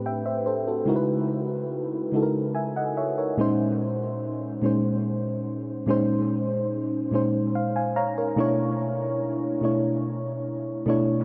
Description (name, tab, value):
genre	R&B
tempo	48 BPM (dotted quarters)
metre	6/8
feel	straight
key	Bb minor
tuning	A4 = 439 Hz
part	mellow FM electric piano	solo	0.0-11.2 s	A2 to Bb5	-26 LUFS	equal	chorus, tape echo
room	wet huge ambient reverb, RT60 8.6 s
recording	dreamy mix soaked in reverb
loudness	-26 LUFS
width	mono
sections	0.0-3.4 A section; 3.4-11.2 B section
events	FM electric piano fill 7.1-8.4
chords	0.0 Am11; 0.9 Dbm11; 3.4 Bbm11; 8.4 Bm11